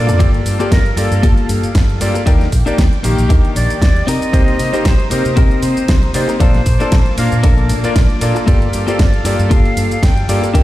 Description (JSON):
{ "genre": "nu-disco, nu disco", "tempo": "116 BPM", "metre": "4/4", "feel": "swing 55% on 16ths", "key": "G minor", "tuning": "A4 = 440 Hz", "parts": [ { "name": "breathy bright jazz flute", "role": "melody", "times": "0.0-10.4 s", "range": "A4 to G5", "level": "-24 LUFS", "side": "right 1 dB", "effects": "analog delay" }, { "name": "bright electric grand piano", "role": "accompaniment", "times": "0.0-10.6 s", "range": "Eb3 to F5", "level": "-20 LUFS", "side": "left 1 dB", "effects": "sidechain pumping" }, { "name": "lush unison pad", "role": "sustained chords", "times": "0.0-10.6 s", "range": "Bb3 to Eb6", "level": "-28 LUFS", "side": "right 1 dB", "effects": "chorus, sidechain pumping" }, { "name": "fingered electric bass with an envelope filter", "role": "bass", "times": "0.0-10.6 s", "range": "G1 to C3", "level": "-17 LUFS", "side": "equal", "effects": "none" }, { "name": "direct-recorded clean electric guitar", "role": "riff", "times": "0.1-10.6 s", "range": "Bb3 to C5", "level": "-22 LUFS", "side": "left 4 dB", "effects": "wide subtle chorus" }, { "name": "pop drum kit", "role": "drums", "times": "0.1-10.6 s", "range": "hi-hat, ride cymbal, shaker, snare drum, toms", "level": "-23 LUFS", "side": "equal", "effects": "none" }, { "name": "electronic kick drum", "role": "drums", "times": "0.2-10.6 s", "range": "none", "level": "-13 LUFS", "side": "equal", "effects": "none" } ], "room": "digital ambience", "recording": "played on a big sound system in a bare room, stone room reverb", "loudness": "-11 LUFS", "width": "side -15 dB against mid", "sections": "0.0-10.6 A section", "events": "drum fill 0.0", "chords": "0.2 Gm9; 2.3 Ebmaj7; 4.1 Cm7; 6.4 Bbmaj7; 8.5 Gm9" }